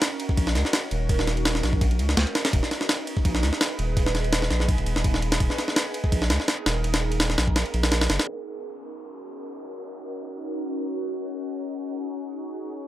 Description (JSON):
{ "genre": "drum and bass, jungle", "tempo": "167 BPM", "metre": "4/4", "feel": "swing 54% on 16ths", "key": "Eb minor", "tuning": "A4 = 444 Hz", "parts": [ { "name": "ethereal airy pad", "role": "sustained chords", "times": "0.0-12.9 s", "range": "Cb4 to Cb5", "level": "-31 LUFS", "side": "right 1 dB", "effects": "ensemble chorus, built-in reverb, phaser, vintage 12-bit sampler grit" }, { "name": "jungle sampler-style drum kit", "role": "drums", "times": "0.0-8.3 s", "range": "kick drum, ride cymbal, snare drum", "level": "-23 LUFS", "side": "equal", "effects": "none" }, { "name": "saturated sub bass", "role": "bass", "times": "0.4-8.2 s", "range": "Eb1 to Db2", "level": "-25 LUFS", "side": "equal", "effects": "none" }, { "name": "downlifter", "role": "sound effects", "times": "8.3-11.2 s", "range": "none", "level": "-50 LUFS", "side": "right 2 dB", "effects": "none" } ], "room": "little or no reverb", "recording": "dry, gritty hardware recording, low-pass filter", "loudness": "-22 LUFS", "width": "side -14 dB against mid", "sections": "0.0-8.3 A section; 8.3-12.9 B section", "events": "filter sweep 8.3-12.9", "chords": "0.0 Ebm7; 2.5 Abm/Eb; 8.3 Ebm7" }